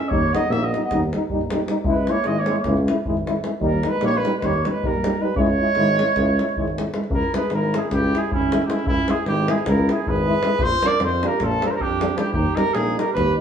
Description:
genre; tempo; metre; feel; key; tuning
balkan folk, Balkan brass band; 309 BPM (eighths); 9/8; straight; C# dorian sharp4; A4 = 439 Hz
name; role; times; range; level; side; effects
warm trumpet; melody; 0.0-13.3 s; E4 to E5; -23 LUFS; right 2 dB; none
mellow clarinet; second line; 0.0-13.4 s; G3 to A#4; -27 LUFS; right 3 dB; none
davul; percussion; 0.0-13.3 s; none; -27 LUFS; left 1 dB; none
clear trombone; accompaniment; 0.1-13.4 s; E#3 to G#3; -30 LUFS; right 6 dB; none
warm euphonium; accompaniment; 0.1-13.4 s; D4 to E4; -27 LUFS; left 5 dB; none
mellow tuba; bass; 0.1-13.4 s; G#1 to E#2; -24 LUFS; equal; none
room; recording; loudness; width
moderate stone room reverb, RT60 1.1 s; band playing live in one room, small room ambience; -18 LUFS; side -8 dB against mid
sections
0.0-7.1 A section; 7.1-13.4 B section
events
none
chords
0.1 D#; 1.9 C#m; 3.6 D#; 5.4 C#m; 10.6 A#; 12.3 D#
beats
| 0.10 0.29 0.49 0.69 0.88 1.08 1.27 1.47 1.66 | 1.86 2.05 2.25 2.44 2.63 2.83 3.02 3.22 3.41 | 3.61 3.80 4.00 4.19 4.39 4.58 4.78 4.97 5.16 | 5.36 5.55 5.75 5.94 6.14 6.33 6.52 6.72 6.91 | 7.11 7.30 7.49 7.69 7.88 8.08 8.27 8.46 8.66 | 8.85 9.04 9.24 9.43 9.63 9.82 10.01 10.21 10.40 | 10.59 10.79 10.98 11.18 11.37 11.56 11.76 11.95 12.14 | 12.34 12.53 12.73 12.92 13.11 13.31

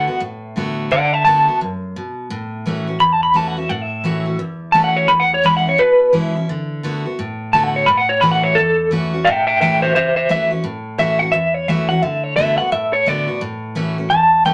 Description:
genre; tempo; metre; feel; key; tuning
rock; 173 BPM; 4/4; swing 62% on 8ths; A major; A4 = 440 Hz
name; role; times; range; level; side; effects
electric guitar through a small old amp; melody; 0.0-14.5 s; A4 to B5; -16 LUFS; equal; tremolo
picked steel-string acoustic guitar; accompaniment; 0.0-14.5 s; E2 to F#4; -24 LUFS; equal; none
room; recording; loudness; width
moderate studio reverb, RT60 0.6 s; none; -17 LUFS; mono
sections
0.0-10.6 A section; 10.6-14.5 B section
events
clean electric guitar solo 10.6-14.5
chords
0.0 D6; 2.3 A6; 5.1 E6; 6.5 D6; 7.9 A6; 12.0 D6; 13.4 A6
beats
0.22 0.57 | 0.92 1.26 1.61 1.96 | 2.31 2.66 3.01 3.36 | 3.71 4.05 4.40 4.75 | 5.10 5.45 5.79 6.14 | 6.49 6.83 7.18 7.53 | 7.88 8.22 8.57 8.91 | 9.26 9.61 9.95 10.30 | 10.65 10.99 11.34 11.68 | 12.03 12.38 12.72 13.07 | 13.41 13.76 14.10 14.45

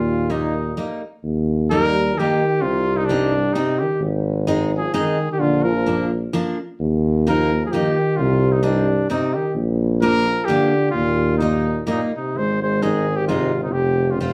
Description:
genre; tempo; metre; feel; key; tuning
alpine folk, alpine dance band; 130 BPM; 3/4; swing 54% on 8ths; Eb major; A4 = 439 Hz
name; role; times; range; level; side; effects
warm trumpet; melody; 0.0-14.3 s; D4 to C5; -24 LUFS; equal; plate reverb
mellow euphonium; second line; 0.0-14.3 s; G2 to Ab3; -25 LUFS; equal; none
warm tuba; bass; 0.0-14.3 s; F1 to Eb2; -23 LUFS; equal; none
picked steel-string acoustic guitar; accompaniment; 0.3-14.3 s; F3 to F4; -26 LUFS; equal; none
room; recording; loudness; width
wet studio reverb, RT60 0.5 s; heard from further back in the room; -20 LUFS; mono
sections
0.0-1.3 A section; 1.3-12.4 A section; 12.4-14.3 B section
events
none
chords
0.0 Eb; 2.6 Cm; 4.0 Ab; 5.4 Bb; 6.8 Ebsus2; 8.2 Cm; 9.6 Bb; 10.9 Eb; 12.4 Ab; 13.8 Fsus2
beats
0.30 0.78 | 1.25 1.72 2.18 | 2.64 3.10 3.56 | 4.02 4.49 4.95 | 5.41 5.87 6.34 | 6.81 7.27 7.73 | 8.19 8.65 9.11 | 9.57 10.03 10.49 | 10.95 11.41 11.88 | 12.35 12.82 13.29 | 13.75 14.21

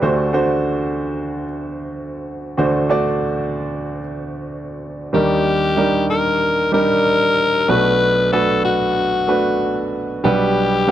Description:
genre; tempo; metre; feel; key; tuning
pop; 94 BPM; 4/4; straight; unclear; A4 = 438 Hz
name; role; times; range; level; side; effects
clear baby grand piano; accompaniment; 0.0-10.9 s; B1 to F#5; -18 LUFS; right 2 dB; none
raspy alto saxophone; melody; 5.1-10.9 s; F#4 to B4; -17 LUFS; left 3 dB; tape echo
room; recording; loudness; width
light reverb; dry, close 1970s-style studio recording; -15 LUFS; side -12 dB against mid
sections
0.0-5.1 A section; 5.1-10.9 B section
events
none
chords
0.0 D7; 5.1 Ebmaj7; 7.7 Bm7; 10.2 Gmaj7/B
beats
| 0.03 0.66 1.30 1.94 | 2.58 3.22 3.86 4.49 | 5.13 5.77 6.41 7.05 | 7.69 8.32 8.96 9.60 | 10.24 10.88

